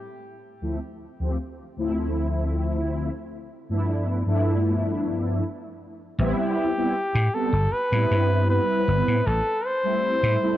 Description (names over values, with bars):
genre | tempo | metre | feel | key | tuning
vaporwave | 78 BPM | 4/4 | straight | A minor | A4 = 440 Hz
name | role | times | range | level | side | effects
mellow synth brass | accompaniment | 0.6-10.6 s | D2 to A4 | -25 LUFS | equal | ensemble chorus, cassette tape
mellow flugelhorn | melody | 6.2-10.6 s | G4 to C5 | -25 LUFS | equal | vintage 12-bit sampler grit, tape echo
vintage slap bass | bass | 6.2-10.4 s | G1 to A2 | -22 LUFS | equal | none
room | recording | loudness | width
light reverb | cassette tape | -22 LUFS | side -13 dB against mid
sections
0.0-6.2 A section; 6.2-10.6 B section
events
break 5.4-6.2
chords
0.0 Dm7; 3.1 G13; 6.2 Am9; 9.3 Am7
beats
| 0.04 0.81 1.58 2.35 | 3.12 3.88 4.65 5.42 | 6.19 6.96 7.73 8.50 | 9.27 10.04